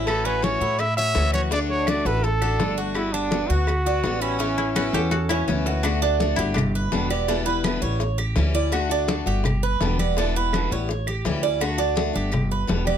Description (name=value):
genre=latin, Cuban son and guajira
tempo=166 BPM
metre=4/4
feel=straight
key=D major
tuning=A4 = 440 Hz
part: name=koto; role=second line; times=0.0-2.0, 4.6-9.0 s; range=C#4 to G4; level=-29 LUFS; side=left 2 dB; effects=none
part: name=picked acoustic archtop guitar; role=accompaniment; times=0.0-13.0 s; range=B2 to G4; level=-27 LUFS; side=left 6 dB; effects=none
part: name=Cuban tres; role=arpeggios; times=0.0-13.0 s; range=C#4 to D5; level=-27 LUFS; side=right 8 dB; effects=none
part: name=upright bass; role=bass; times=0.0-13.0 s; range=E1 to A2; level=-25 LUFS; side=equal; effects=none
part: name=breathy trumpet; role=melody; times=0.1-5.5 s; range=C#4 to E5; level=-25 LUFS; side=right 1 dB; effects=none
part: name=bongos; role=percussion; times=0.1-12.9 s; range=none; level=-32 LUFS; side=left 6 dB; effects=none
part: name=claves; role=percussion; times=0.1-13.0 s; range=none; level=-36 LUFS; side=right 2 dB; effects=none
part: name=congas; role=percussion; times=0.1-13.0 s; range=none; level=-29 LUFS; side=left 2 dB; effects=none
room=little or no reverb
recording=close, detailed microphones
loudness=-20 LUFS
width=side -9 dB against mid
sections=0.0-5.8 A section; 5.8-13.0 B section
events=drum fill 4.9-5.8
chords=0.1 A6; 1.5 D; 3.0 Gmaj7; 4.4 Aadd9; 5.8 D; 6.6 G; 7.3 Em7; 8.0 A7; 8.7 D; 9.4 G; 10.2 Em7; 10.9 A7; 11.6 D; 12.3 G